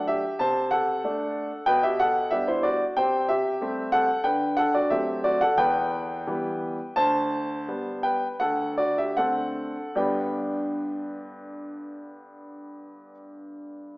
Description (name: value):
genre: classical-period piano sonatina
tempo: 73-94 BPM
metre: 4/4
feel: rubato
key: G major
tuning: A4 = 440 Hz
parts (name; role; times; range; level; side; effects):
- warm concert grand piano; solo; 0.0-14.0 s; D2 to A5; -24 LUFS; equal; none
room: wet recital hall reverb, RT60 1.7 s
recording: small speaker sound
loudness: -23 LUFS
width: side -22 dB against mid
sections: 0.0-10.0 A section; 10.0-13.0 B section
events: slowing down 3.0-10.0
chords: 0.4 D7/C; 1.7 G/B; 3.0 Am7/C; 4.3 D7; 5.6 Em; 7.0 G/D; 8.4 D7; 10.0 G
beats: 0.40 1.03 | 1.67 2.31 2.97 3.61 | 4.25 4.91 5.59 6.28 | 6.97 7.68 8.41 9.17 | 9.97 10.74 11.51 12.27